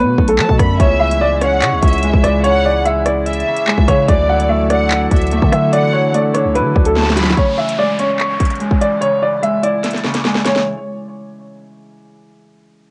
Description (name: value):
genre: hip hop, drill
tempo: 146 BPM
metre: 4/4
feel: half-time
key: C# phrygian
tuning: A4 = 440 Hz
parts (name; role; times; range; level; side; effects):
- clear upright piano; melody; 0.0-10.6 s; A4 to F#5; -19 LUFS; equal; low-pass filter
- Celtic harp; accompaniment; 0.0-12.2 s; C#3 to E5; -23 LUFS; equal; low-pass filter, cassette tape
- growling 808-style bass; bass; 0.0-7.3 s; B1 to F#3; -21 LUFS; equal; transformer saturation
- drill drum kit; drums; 0.2-10.7 s; handclaps, hi-hat, kick drum, rim click, snare drum; -18 LUFS; equal; cassette tape
- rich studio violin section; second line; 0.4-7.4 s; D5 to B5; -23 LUFS; equal; cassette tape, analog delay
- pipe organ, foundations; sustained chords; 0.8-7.3 s; C#3 to A4; -25 LUFS; equal; cassette tape
- downlifter; sound effects; 7.4-10.7 s; none; -32 LUFS; equal; none
room: light reverb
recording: home recording on cassette, nothing above 10.5 kHz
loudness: -14 LUFS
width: mono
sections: 0.0-7.4 A section; 7.4-10.7 B section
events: drum fill 7.0-7.4, 9.8-10.7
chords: 0.0 Bm7; 0.8 C#m; 4.1 Dadd9; 7.4 C#m